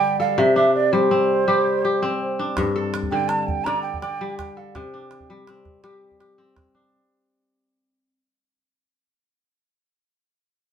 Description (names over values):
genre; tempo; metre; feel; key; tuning
west african traditional, West African string and xylophone music; 110 BPM (dotted quarters); 12/8; straight; unclear; A4 = 444 Hz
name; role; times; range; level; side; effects
mellow hollow jazz flute; melody; 0.0-5.5 s; C5 to Bb5; -22 LUFS; right 5 dB; none
kora; arpeggios; 0.0-8.4 s; G2 to D5; -22 LUFS; left 2 dB; none
calabash; percussion; 2.6-6.6 s; none; -31 LUFS; right 2 dB; none
room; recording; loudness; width
wet studio reverb, RT60 0.6 s; band playing live in one room; -18 LUFS; side -8 dB against mid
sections
0.0-6.9 A section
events
fade-out 0.0-6.9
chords
0.4 C5; 2.6 G5; 4.7 C5